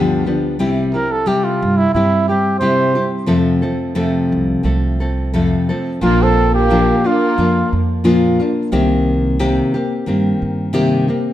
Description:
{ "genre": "mexican folk, mariachi", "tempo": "89 BPM", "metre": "4/4", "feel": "straight", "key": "F major, Bb major from 6.0 s", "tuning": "A4 = 442 Hz", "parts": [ { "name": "nylon-string guitar", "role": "accompaniment", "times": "0.0-11.3 s", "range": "F2 to A4", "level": "-16 LUFS", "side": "left 2 dB", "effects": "none" }, { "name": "upright bass", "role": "bass", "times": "0.0-11.1 s", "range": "Bb1 to G2", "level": "-20 LUFS", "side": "right 1 dB", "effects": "none" }, { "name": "mellow trumpet", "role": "melody", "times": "0.9-7.7 s", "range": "E4 to C5", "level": "-17 LUFS", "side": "right 2 dB", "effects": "none" }, { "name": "dark studio violin section", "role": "second line", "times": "6.0-7.7 s", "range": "Bb3 to C4", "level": "-22 LUFS", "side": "right 5 dB", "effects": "none" } ], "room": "light reverb", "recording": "minimal, uncompressed stereo recording", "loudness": "-13 LUFS", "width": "side -12 dB against mid", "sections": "0.0-6.0 A section; 6.0-11.3 B section", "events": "none", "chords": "0.0 G7; 0.6 C; 3.3 F; 6.0 Bb; 8.7 Cm7", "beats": "| 0.59 1.27 1.94 2.61 | 3.28 3.96 4.64 5.33 | 6.01 6.69 7.37 8.05 | 8.72 9.39 10.06 10.73" }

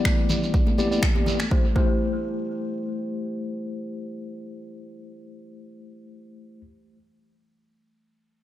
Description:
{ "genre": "afro house", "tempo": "123 BPM", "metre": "4/4", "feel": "straight", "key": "A minor", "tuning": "A4 = 441 Hz", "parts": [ { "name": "kalimba", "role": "arpeggios", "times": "0.0-1.9 s", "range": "E3 to G4", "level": "-30 LUFS", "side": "left 1 dB", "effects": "sidechain pumping, low-pass filter, analog delay" }, { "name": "mellow tine electric piano", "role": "stabs", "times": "0.0-6.6 s", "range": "A3 to D5", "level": "-30 LUFS", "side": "left 2 dB", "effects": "medium stereo tremolo, sidechain pumping, analog delay" }, { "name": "electronic finger snaps", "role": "drums", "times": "0.1-1.5 s", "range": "none", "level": "-30 LUFS", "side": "equal", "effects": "overdrive, studio reverb" }, { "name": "electronic kick drum", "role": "drums", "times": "0.1-1.9 s", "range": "none", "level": "-22 LUFS", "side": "equal", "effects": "overdrive, studio reverb" }, { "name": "shekere", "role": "percussion", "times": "0.1-1.5 s", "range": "none", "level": "-34 LUFS", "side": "right 2 dB", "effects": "analog delay" }, { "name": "congas", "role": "percussion", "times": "0.3-1.5 s", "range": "none", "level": "-32 LUFS", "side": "left 2 dB", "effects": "analog delay" } ], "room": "light reverb, studio reverb", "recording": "echo-heavy mix", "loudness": "-22 LUFS", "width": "side -13 dB against mid", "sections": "0.0-1.5 A section; 1.5-5.4 B section", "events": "filter sweep on kalimba 0.0-1.5", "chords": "0.0 Em7; 1.5 Am7", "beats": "0.05 0.54 1.03 | 1.51 2.00 2.49 2.98 | 3.47 3.95 4.44 4.93" }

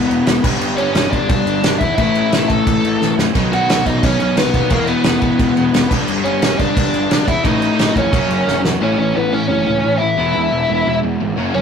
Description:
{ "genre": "punk rock", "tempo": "176 BPM", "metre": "4/4", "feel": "straight", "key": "unclear", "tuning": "A4 = 440 Hz", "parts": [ { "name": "biting lead guitar", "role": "melody", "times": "0.0-11.6 s", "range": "A#3 to A5", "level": "-18 LUFS", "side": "left 1 dB", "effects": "overdrive" }, { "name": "cranked stack guitar", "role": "riff", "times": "0.0-11.6 s", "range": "G2 to F#4", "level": "-24 LUFS", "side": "right 7 dB", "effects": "overdrive" }, { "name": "fuzz guitar", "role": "riff", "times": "0.0-11.6 s", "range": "G2 to F#4", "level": "-24 LUFS", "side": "equal", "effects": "none" }, { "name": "overdriven electric guitar", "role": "riff", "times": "0.0-11.6 s", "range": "E2 to B3", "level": "-22 LUFS", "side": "left 8 dB", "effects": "none" }, { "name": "fuzz picked electric bass", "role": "bass", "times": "0.0-11.6 s", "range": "E1 to F#2", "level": "-24 LUFS", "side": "right 1 dB", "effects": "overdrive" }, { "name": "loose indie drum kit", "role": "drums", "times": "0.1-8.7 s", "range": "crash cymbal, kick drum, snare drum, splash cymbal", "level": "-18 LUFS", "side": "right 1 dB", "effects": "none" } ], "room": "light reverb", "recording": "rough rehearsal-room recording, warm saturation", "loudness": "-13 LUFS", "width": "side -7 dB against mid", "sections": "0.0-8.8 A section; 8.8-11.6 B section", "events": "drum fill 3.0-3.4, 8.5-8.8", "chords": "0.4 G; 2.0 A; 3.4 B; 4.7 E; 5.9 G; 7.4 A; 8.1 F#; 8.8 A; 10.2 E", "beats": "0.28 | 0.62 0.96 1.30 1.64 | 1.99 2.33 2.67 3.01 | 3.35 3.69 4.04 4.38 | 4.72 5.06 5.40 5.74 | 6.08 6.42 6.77 7.11 | 7.45 7.79 8.13 8.47 | 8.81 9.15 9.49 9.84 | 10.18 10.52 10.86 11.20 | 11.54" }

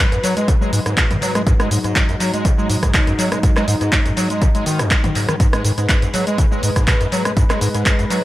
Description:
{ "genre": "acid house", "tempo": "122 BPM", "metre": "4/4", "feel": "swing 54% on 16ths", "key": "G# minor pentatonic", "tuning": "A4 = 440 Hz", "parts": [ { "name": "warm analog pad", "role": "sustained chords", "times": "0.0-8.2 s", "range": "G#2 to B4", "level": "-24 LUFS", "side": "left 1 dB", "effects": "chorus, sidechain pumping" }, { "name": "overdriven acid bass", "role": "riff", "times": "0.0-8.2 s", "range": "F#2 to G#3", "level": "-20 LUFS", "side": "equal", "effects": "tube saturation, ensemble chorus, analog delay" }, { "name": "punchy analog drum machine", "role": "drums", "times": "0.0-8.2 s", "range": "handclaps, hi-hat, rim click, shaker, toms", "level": "-21 LUFS", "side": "equal", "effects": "analog delay" }, { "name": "electronic kick drum", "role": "drums", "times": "0.5-8.0 s", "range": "none", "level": "-16 LUFS", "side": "equal", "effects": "none" } ], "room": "light reverb", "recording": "echo-heavy mix", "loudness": "-14 LUFS", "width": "side -15 dB against mid", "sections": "0.0-8.2 A section", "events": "none", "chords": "0.0 G#m7", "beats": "0.48 0.97 | 1.47 1.96 2.45 2.94 | 3.43 3.92 4.42 4.91 | 5.40 5.89 6.38 6.88 | 7.37 7.86" }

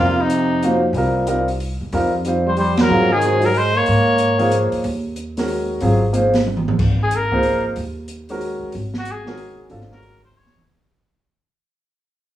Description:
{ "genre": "modal jazz", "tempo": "185 BPM", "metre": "3/4", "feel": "swing 63% on 8ths", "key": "unclear", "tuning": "A4 = 440 Hz", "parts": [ { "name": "warm trumpet", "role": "melody", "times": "0.0-4.7, 7.0-10.6 s", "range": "Eb4 to Db5", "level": "-19 LUFS", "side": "left 2 dB", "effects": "none" }, { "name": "brilliant trombone", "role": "second line", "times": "0.0-4.7 s", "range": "C3 to Bb3", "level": "-21 LUFS", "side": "right 2 dB", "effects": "none" }, { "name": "warm concert grand piano", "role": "accompaniment", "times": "0.0-10.2 s", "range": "Db3 to Db5", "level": "-20 LUFS", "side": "equal", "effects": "none" }, { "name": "upright bass", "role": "bass", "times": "0.0-10.6 s", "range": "Ab1 to Ab2", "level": "-22 LUFS", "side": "equal", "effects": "none" }, { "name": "open jazz drum kit", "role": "drums", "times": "0.3-10.7 s", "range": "crash cymbal, hi-hat, kick drum, ride cymbal, snare drum, toms", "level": "-24 LUFS", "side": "right 1 dB", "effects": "none" } ], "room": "wet large studio reverb, RT60 0.9 s", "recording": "band playing live in one room, small room reverb", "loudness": "-16 LUFS", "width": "side -12 dB against mid", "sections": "0.0-6.8 A section; 6.8-10.7 B section", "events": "band accent 2.7; drum fill 6.5-6.8, 10.4-10.7; fade-out 6.8-10.7; trumpet solo 6.8-10.7", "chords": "0.0 F9sus4; 2.9 Ab9sus4", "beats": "0.29 0.62 | 0.94 1.27 1.59 | 1.92 2.25 2.57 | 2.90 3.22 3.54 | 3.87 4.19 4.52 | 4.84 5.17 5.49 | 5.82 6.14 6.46 | 6.79 7.11 7.44 | 7.76 8.09 8.41 | 8.73 9.06 9.38 | 9.71 10.03 10.36" }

